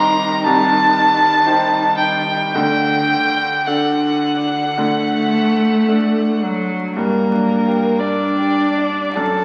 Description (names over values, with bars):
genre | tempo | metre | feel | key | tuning
classical, slow romantic movement for piano trio | 49-65 BPM | 4/4 | rubato | G minor | A4 = 440 Hz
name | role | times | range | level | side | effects
rich violin | melody | 0.0-9.4 s | Bb4 to Bb5 | -19 LUFS | equal | none
rich cello | second line | 0.0-9.4 s | D3 to A4 | -22 LUFS | equal | none
bright grand piano | accompaniment | 0.0-9.4 s | C2 to D5 | -23 LUFS | equal | none
room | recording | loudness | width
wet concert hall reverb, RT60 2.1 s | very old 78 rpm record, vinyl crackle | -16 LUFS | mono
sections
0.0-7.0 A section; 7.0-9.4 B section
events
none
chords
0.0 Cm; 2.6 D; 7.0 Gm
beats
0.46 1.45 | 2.55 3.67 4.78 5.88 | 6.96 7.99 9.15